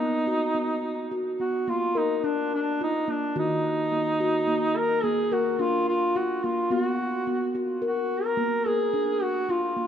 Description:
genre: world meditative, meditative tuned percussion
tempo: 108 BPM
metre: 3/4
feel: straight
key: Bb phrygian dominant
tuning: A4 = 440 Hz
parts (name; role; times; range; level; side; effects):
- mellow duduk; melody; 0.0-9.9 s; D4 to Bb4; -25 LUFS; right 1 dB; tape echo
- steel tongue drum; arpeggios; 0.0-9.9 s; Eb3 to Bb4; -28 LUFS; left 2 dB; tape echo
room: wet echo chamber reverb, RT60 1.7 s, small room ambience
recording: none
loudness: -23 LUFS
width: side -9 dB against mid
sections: 0.0-1.7 A section; 1.7-9.9 B section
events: none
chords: 0.0 B; 1.7 Bb; 3.4 Ebm; 5.0 Bb; 6.7 B5; 8.4 Bb

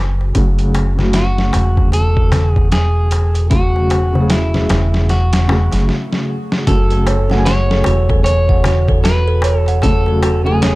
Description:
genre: trip hop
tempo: 76 BPM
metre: 4/4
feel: swing 60% on 16ths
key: F# minor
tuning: A4 = 440 Hz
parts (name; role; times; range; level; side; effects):
- felt-muted upright piano; accompaniment; 0.0-10.8 s; C#3 to G#5; -20 LUFS; equal; tremolo
- deep dub fingered electric bass; bass; 0.0-10.8 s; E1 to F#1; -15 LUFS; equal; transformer saturation
- darbuka; percussion; 0.2-10.8 s; none; -24 LUFS; left 2 dB; none
- boom bap sampler-style drum kit; drums; 0.3-10.8 s; hi-hat, kick drum, snare drum; -17 LUFS; equal; overdrive, vintage 12-bit sampler grit, studio reverb
- electric guitar at the edge of break-up; melody; 1.2-10.8 s; E4 to C#5; -21 LUFS; equal; vintage 12-bit sampler grit, dub echo
- music box; arpeggios; 6.7-10.8 s; F#4 to F#5; -22 LUFS; right 4 dB; tape echo
room: small room ambience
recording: dry, gritty hardware recording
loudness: -12 LUFS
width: side -20 dB against mid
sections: 0.0-6.7 A section; 6.7-10.8 B section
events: drum fill 5.9-6.7; stop 5.9-6.7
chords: 0.0 F#m

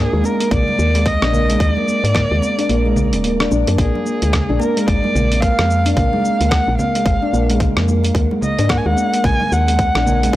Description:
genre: organic downtempo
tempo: 110 BPM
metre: 4/4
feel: swing 60% on 16ths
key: unclear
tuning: A4 = 439 Hz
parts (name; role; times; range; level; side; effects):
- warm kamancheh; melody; 0.0-10.4 s; Ab4 to Ab5; -21 LUFS; equal; tape echo
- handpan; arpeggios; 0.0-10.3 s; Ab3 to D4; -19 LUFS; equal; tape echo
- woody FM bass; bass; 0.0-10.4 s; Eb1 to Ab2; -18 LUFS; equal; none
- dusty soul sampler-style drum kit; drums; 0.2-10.3 s; congas, hi-hat, rim click, shaker; -23 LUFS; right 1 dB; overdrive
- congas and bongos; percussion; 0.2-10.3 s; none; -30 LUFS; right 2 dB; none
- electronic kick drum; drums; 0.5-10.4 s; none; -19 LUFS; equal; overdrive
room: small room ambience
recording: dry, gritty hardware recording, transformer saturation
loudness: -14 LUFS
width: side -15 dB against mid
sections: 0.0-10.4 A section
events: kick drops out 2.7-3.8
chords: 0.0 Eb5; 3.8 Bb7; 8.2 Ebm

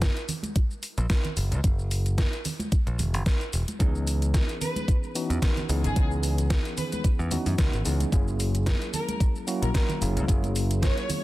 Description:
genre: nu-disco, nu disco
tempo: 111 BPM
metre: 4/4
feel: swing 55% on 16ths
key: C# dorian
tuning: A4 = 444 Hz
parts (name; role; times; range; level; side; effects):
- modern bright picked electric bass; bass; 0.0-10.9 s; E1 to F#2; -26 LUFS; equal; none
- electronic kick drum; drums; 0.0-10.9 s; none; -24 LUFS; equal; overdrive
- pop drum kit; drums; 0.0-11.2 s; hi-hat, shaker, snare drum; -33 LUFS; equal; overdrive
- congas; percussion; 0.3-11.2 s; none; -35 LUFS; right 3 dB; none
- tine electric piano; accompaniment; 3.8-11.2 s; E3 to G#4; -31 LUFS; equal; medium stereo tremolo
- rich studio violin section; melody; 4.6-11.2 s; G#4 to C#5; -36 LUFS; equal; tape echo
room: little or no reverb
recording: dense, heavily limited modern master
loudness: -23 LUFS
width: side -17 dB against mid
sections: 0.0-11.2 A section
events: none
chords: 0.0 N.C.; 3.8 C#m7; 8.1 F#7

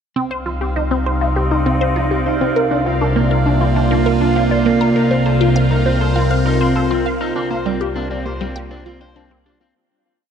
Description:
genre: ambient, sequencer-driven space music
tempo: 100 BPM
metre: 4/4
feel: straight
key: C minor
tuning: A4 = 439 Hz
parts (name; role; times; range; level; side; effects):
- evolving wavetable pad; sustained chords; 0.7-9.7 s; C3 to D5; -17 LUFS; right 1 dB; phaser, built-in reverb, shimmer reverb
- electric guitar at the edge of break-up; arpeggios; 0.2-9.7 s; C4 to C5; -29 LUFS; left 3 dB; auto-pan, analog delay, shimmer reverb
- resonant blip pluck; riff; 0.2-9.7 s; G3 to F5; -20 LUFS; equal; phaser, analog delay, shimmer reverb
- warm sub bass; bass; 0.2-9.7 s; C2; -23 LUFS; equal; none
- bubbling stepped-filter texture; texture; 0.4-9.8 s; F5; -26 LUFS; right 4 dB; chorus, built-in reverb, shimmer reverb
room: wet huge ambient reverb, RT60 8.3 s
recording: dark, warm production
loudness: -14 LUFS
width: side -7 dB against mid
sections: 0.2-9.8 A section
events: fade-in on clean electric guitar 0.2-9.8; fade-out 6.6-9.8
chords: 0.2 Cmadd9; 2.6 Bb/C; 5.0 Fsus4/C; 7.4 Gm7/C

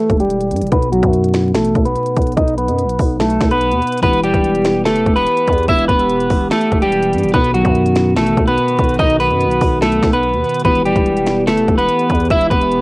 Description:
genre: hip hop, trap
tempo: 145 BPM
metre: 4/4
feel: half-time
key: E harmonic minor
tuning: A4 = 440 Hz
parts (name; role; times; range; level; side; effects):
- electric guitar at the edge of break-up; melody; 0.0-12.8 s; F#3 to E5; -14 LUFS; equal; low-pass filter, cassette tape, tape echo
- mellow tine electric piano; accompaniment; 0.0-12.8 s; B2 to B4; -22 LUFS; left 2 dB; wide subtle chorus, low-pass filter, cassette tape
- growling 808-style bass; bass; 0.1-12.8 s; D#1 to G2; -20 LUFS; equal; none
- trap drum kit; drums; 0.1-12.8 s; finger snaps, hi-hat, kick drum, snare drum; -19 LUFS; equal; cassette tape
- hollow soft pad; sustained chords; 4.0-12.8 s; D#3 to G4; -22 LUFS; right 1 dB; chorus, cassette tape
room: little or no reverb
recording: home recording on cassette, vinyl crackle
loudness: -12 LUFS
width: side -23 dB against mid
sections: 0.0-12.8 A section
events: filter sweep 0.0-4.0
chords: 0.0 Em; 0.7 B; 4.0 Em; 7.3 B; 10.6 Em

